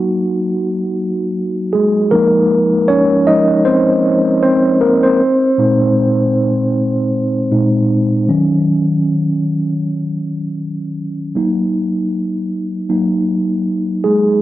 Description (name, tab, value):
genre	R&B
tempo	78 BPM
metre	4/4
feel	swing 58% on 16ths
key	unclear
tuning	A4 = 443 Hz
part	mellow tine electric piano	solo	0.0-14.4 s	Bb2 to Eb5	-13 LUFS	equal	medium stereo tremolo, digital delay
room	light reverb, digital ambience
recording	worn, warbling old tape, cassette tape, warbly pitch drift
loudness	-13 LUFS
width	side -15 dB against mid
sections	0.0-14.4 A section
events	tine electric piano solo 0.0-14.4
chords	0.0 Gb6; 2.1 Fm7; 5.2 Bb9sus4; 8.3 Ebm7; 11.4 Gb6